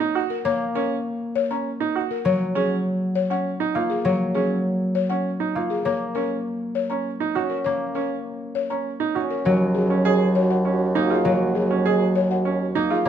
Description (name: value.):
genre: classical, minimalist pattern music.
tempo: 100 BPM.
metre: 3/4.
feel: straight.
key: Eb minor.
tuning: A4 = 440 Hz.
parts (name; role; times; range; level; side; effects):
concert harp; accompaniment; 0.0-13.1 s; Gb3 to Db4; -24 LUFS; equal; none.
bright grand piano; arpeggios; 0.0-13.1 s; Db4 to Ab4; -25 LUFS; right 6 dB; none.
buzzing marimba with soft mallets; melody; 0.3-13.1 s; Ab4 to Bb5; -26 LUFS; left 7 dB; none.
mellow French horn; second line; 9.5-13.1 s; D#4 to Gb4; -29 LUFS; right 7 dB; none.
clear bassoon; bass; 9.5-13.1 s; Eb2 to B2; -26 LUFS; right 1 dB; none.
room: moderate recital hall reverb, RT60 1.4 s.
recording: none.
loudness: -20 LUFS.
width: side -9 dB against mid.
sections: 0.0-9.5 A section; 9.5-13.1 A section.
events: none.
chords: 0.0 Gb6; 2.3 Ebm7 (rootless); 5.9 Gb; 9.5 Ebm7.